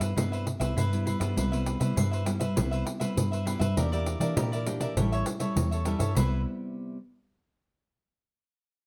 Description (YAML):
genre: samba and choro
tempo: 100 BPM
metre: 4/4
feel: straight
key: C major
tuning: A4 = 440 Hz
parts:
  - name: cavaquinho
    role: melody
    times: 0.0-0.7 s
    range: none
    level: barely audible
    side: none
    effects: none
  - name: cavaquinho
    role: accompaniment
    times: 0.0-6.4 s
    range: E4 to E5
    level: -37 LUFS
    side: equal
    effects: none
  - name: nylon-string guitar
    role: accompaniment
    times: 0.0-7.0 s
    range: G2 to G4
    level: -36 LUFS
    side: equal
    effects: none
  - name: vintage muted fingered electric bass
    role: bass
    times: 0.0-6.4 s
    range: A1 to E3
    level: -31 LUFS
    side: equal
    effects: none
  - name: pandeiro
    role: percussion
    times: 0.0-6.3 s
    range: none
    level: -34 LUFS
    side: equal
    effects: none
room: moderate studio reverb, RT60 0.7 s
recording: none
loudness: -28 LUFS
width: mono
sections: 0.0-1.4 A section; 1.4-6.2 B section; 6.2-8.6 C section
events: none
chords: 0.0 Cmaj7; 3.8 Em7b5; 5.0 A7; 6.2 Cmaj7